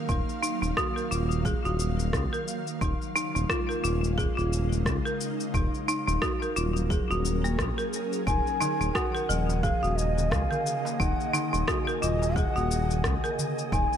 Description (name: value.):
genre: organic downtempo.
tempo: 88 BPM.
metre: 4/4.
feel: swing 57% on 16ths.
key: unclear.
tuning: A4 = 440 Hz.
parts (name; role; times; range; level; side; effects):
ethereal airy pad; sustained chords; 0.0-14.0 s; Db3 to F5; -34 LUFS; equal; ensemble chorus, built-in reverb, sidechain pumping.
folk marimba with hard mallets; arpeggios; 0.1-14.0 s; F3 to Bb4; -30 LUFS; right 1 dB; low-pass filter, ping-pong delay.
smooth synth bass; bass; 0.1-13.9 s; Eb1 to Db2; -28 LUFS; equal; none.
electronic cabasa and rim click; drums; 0.1-14.0 s; none; -35 LUFS; left 2 dB; none.
electronic kick drum; drums; 0.1-13.9 s; none; -31 LUFS; equal; none.
breathy mellow bansuri; melody; 8.3-14.0 s; Eb5 to Ab5; -31 LUFS; left 1 dB; tape echo.
wind-like tuned noise texture; texture; 9.1-14.0 s; Ab4 to Ab5; -39 LUFS; left 1 dB; built-in reverb.
darbuka; percussion; 8.6-13.7 s; none; -38 LUFS; right 1 dB; none.
room: light reverb.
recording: none.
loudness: -25 LUFS.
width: side -9 dB against mid.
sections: 0.0-14.0 A section.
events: none.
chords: 0.0 Gbmaj7/Eb; 2.8 Db/Eb; 5.5 Gbmaj7/Eb.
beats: | 0.09 0.77 1.45 2.13 | 2.82 3.50 4.18 4.86 | 5.54 6.22 6.91 7.59 | 8.27 8.95 9.63 10.32 | 11.00 11.68 12.36 13.04 | 13.72.